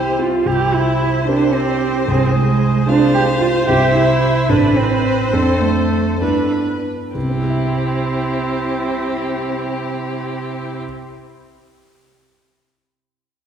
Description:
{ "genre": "quick classical-period movement for piano quartet", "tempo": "62-76 BPM (dotted quarters)", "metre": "6/8", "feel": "straight", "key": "C major", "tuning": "A4 = 440 Hz", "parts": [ { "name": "clear violin", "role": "melody", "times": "0.0-10.8 s", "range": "G4 to F5", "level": "-25 LUFS", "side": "left 4 dB", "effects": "none" }, { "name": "dark cello", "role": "second line", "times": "0.0-10.8 s", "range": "Ab3 to G4", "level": "-18 LUFS", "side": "right 3 dB", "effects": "none" }, { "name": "clear viola", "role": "accompaniment", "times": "0.0-10.8 s", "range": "E4 to C5", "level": "-24 LUFS", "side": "right 1 dB", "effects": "none" }, { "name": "dark concert grand piano", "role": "accompaniment", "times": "0.0-11.1 s", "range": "A1 to E5", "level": "-19 LUFS", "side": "right 1 dB", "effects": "none" } ], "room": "wet scoring stage reverb, RT60 2.1 s", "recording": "heard from further back in the room", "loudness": "-15 LUFS", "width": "side -8 dB against mid", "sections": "0.5-7.1 A section; 7.1-10.8 B section", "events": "slowing down 2.9-7.1", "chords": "0.5 C7; 2.1 Fm/C; 3.7 C; 4.5 Am; 5.3 Dm7/F; 6.2 G69; 7.1 C", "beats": "| 0.46 1.28 | 2.09 2.89 | 3.69 4.50 | 5.33 6.21 | 7.15 8.07 | 8.98 9.90" }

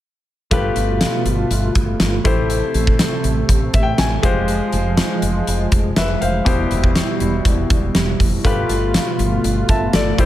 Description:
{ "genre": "1980s-style pop", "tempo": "121 BPM", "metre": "4/4", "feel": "straight", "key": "unclear", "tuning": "A4 = 440 Hz", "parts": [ { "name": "clear concert grand piano", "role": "accompaniment", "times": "0.5-10.3 s", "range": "B2 to A5", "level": "-22 LUFS", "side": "left 3 dB", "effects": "none" }, { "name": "brassy analog pad", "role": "sustained chords", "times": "0.5-10.3 s", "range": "B2 to G4", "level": "-22 LUFS", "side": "right 1 dB", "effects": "chorus, tremolo" }, { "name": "woody fretless electric bass", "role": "bass", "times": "0.5-10.3 s", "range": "E1 to A1", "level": "-21 LUFS", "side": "equal", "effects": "none" }, { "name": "huge arena drum kit", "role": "drums", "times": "0.5-10.3 s", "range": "hi-hat, kick drum, snare drum", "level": "-18 LUFS", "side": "equal", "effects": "none" } ], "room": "light reverb", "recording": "none", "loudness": "-15 LUFS", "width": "side -13 dB against mid", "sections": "0.5-10.3 A section", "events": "grand piano fill 3.5-4.5", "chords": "0.5 G9; 2.2 Am7; 4.2 Fmadd9; 6.5 Cmaj7/E; 8.4 G9", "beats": "| 0.52 1.01 1.51 2.00 | 2.50 2.99 3.49 3.99 | 4.48 4.98 5.47 5.97 | 6.46 6.96 7.46 7.95 | 8.45 8.94 9.44 9.94" }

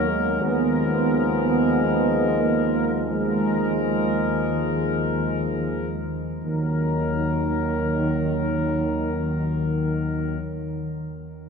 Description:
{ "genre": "classical, hymn-like piece for brass band", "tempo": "32-48 BPM", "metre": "4/4", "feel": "rubato", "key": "Eb minor", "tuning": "A4 = 440 Hz", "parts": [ { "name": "clear trumpet section", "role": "melody", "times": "0.0-10.4 s", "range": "Bb4", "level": "-29 LUFS", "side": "left 4 dB", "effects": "none" }, { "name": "mellow French horn section", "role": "second line", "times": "0.0-10.4 s", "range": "Eb3 to Cb4", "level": "-26 LUFS", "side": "right 4 dB", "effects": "none" }, { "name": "clear trombone", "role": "accompaniment", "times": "0.0-10.4 s", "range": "Eb3 to F3", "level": "-30 LUFS", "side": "equal", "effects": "none" }, { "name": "clear trombone section", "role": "accompaniment", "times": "0.0-10.4 s", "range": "Gb3 to Ab3", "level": "-29 LUFS", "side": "left 2 dB", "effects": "none" }, { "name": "mellow tuba", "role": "bass", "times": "0.0-10.4 s", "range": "Eb2", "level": "-26 LUFS", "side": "equal", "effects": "none" } ], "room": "wet cathedral reverb, RT60 5.3 s", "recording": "recorded in a church or concert hall", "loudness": "-21 LUFS", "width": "side -5 dB against mid", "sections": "0.0-6.4 A section; 6.4-11.5 B section", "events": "slowing down 0.0-6.4", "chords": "0.4 Bb5/Eb; 6.4 Ebm", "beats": "| 0.41 1.71 3.10 4.66 | 6.44 8.12 9.83" }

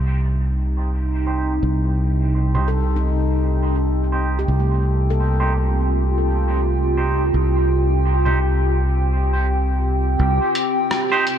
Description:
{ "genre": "ambient dub", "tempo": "84 BPM", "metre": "4/4", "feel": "swing 58% on 16ths", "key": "C dorian", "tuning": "A4 = 441 Hz", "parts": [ { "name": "warbly tape-like pad", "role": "sustained chords", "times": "0.0-11.4 s", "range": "C3 to G5", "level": "-22 LUFS", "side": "right 1 dB", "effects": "chorus, built-in reverb, phaser" }, { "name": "fingered electric bass", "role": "bass", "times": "0.0-10.4 s", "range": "C2", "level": "-19 LUFS", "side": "equal", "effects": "tube saturation" }, { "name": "clean electric guitar", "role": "stabs", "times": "1.3-11.2 s", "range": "Eb4 to C5", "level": "-28 LUFS", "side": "right 3 dB", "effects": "low-pass filter, dub echo" }, { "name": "lo-fi sampler-style drum kit", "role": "drums", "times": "2.5-2.7, 8.3-11.4 s", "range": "congas, hi-hat, rim click", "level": "-27 LUFS", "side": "right 1 dB", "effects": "low-pass filter on hats, low-pass filter on snare, low-pass filter on perc, low-pass filter on room, dub echo" }, { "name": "handpan", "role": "arpeggios", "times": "2.7-7.7 s", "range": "A3 to A4", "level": "-29 LUFS", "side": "left 2 dB", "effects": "low-pass filter, dub echo" } ], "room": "moderate huge ambient reverb, RT60 4.3 s", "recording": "dreamy mix soaked in reverb", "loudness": "-17 LUFS", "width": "side -9 dB against mid", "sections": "0.0-10.2 A section; 10.2-11.4 B section", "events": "filter sweep on drum 0.0-10.2; filter sweep on handpan 0.0-10.2", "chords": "0.0 Cm", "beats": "0.20 0.91 | 1.63 2.34 3.05 3.77 | 4.48 5.20 5.91 6.63 | 7.34 8.05 8.77 9.48 | 10.20 10.91" }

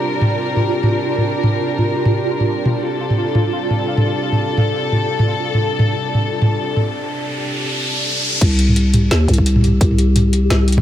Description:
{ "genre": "half-time drum and bass", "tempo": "172 BPM", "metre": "4/4", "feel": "swing 56% on 16ths, half-time", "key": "unclear", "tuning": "A4 = 440 Hz", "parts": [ { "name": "dark studio string section", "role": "sustained chords", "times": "0.0-8.4 s", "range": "C3 to Bb4", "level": "-21 LUFS", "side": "left 1 dB", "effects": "sidechain pumping" }, { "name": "pulsing gated texture", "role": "texture", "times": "0.0-10.8 s", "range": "F4 to G4", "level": "-25 LUFS", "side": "right 2 dB", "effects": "chorus, built-in reverb" }, { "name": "drum and bass drum kit", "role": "drums", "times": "0.2-10.8 s", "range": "crash cymbal, hi-hat, snare drum, toms", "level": "-17 LUFS", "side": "equal", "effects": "none" }, { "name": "riser", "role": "sound effects", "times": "7.0-8.4 s", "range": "none", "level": "-23 LUFS", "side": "equal", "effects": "none" }, { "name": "growling 808-style bass", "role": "bass", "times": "8.4-10.8 s", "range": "C2 to Eb2", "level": "-14 LUFS", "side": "equal", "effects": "none" }, { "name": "electronic kick drum", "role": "drums", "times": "8.4-10.8 s", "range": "none", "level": "-15 LUFS", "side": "equal", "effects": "none" } ], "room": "light reverb", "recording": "none", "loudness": "-14 LUFS", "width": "side -11 dB against mid", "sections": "0.0-8.4 A section; 8.4-10.8 B section", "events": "riser 7.0-8.4; break 7.0-8.4; drop 8.4-10.8", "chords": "0.0 C5", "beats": "| 0.04 0.39 0.74 1.08 | 1.43 1.78 2.13 2.48 | 2.83 3.18 3.53 3.88 | 4.22 4.57 4.92 5.27 | 5.62 5.97 6.32 6.67 | 7.01 7.36 7.71 8.06 | 8.41 8.76 9.11 9.46 | 9.81 10.15 10.50" }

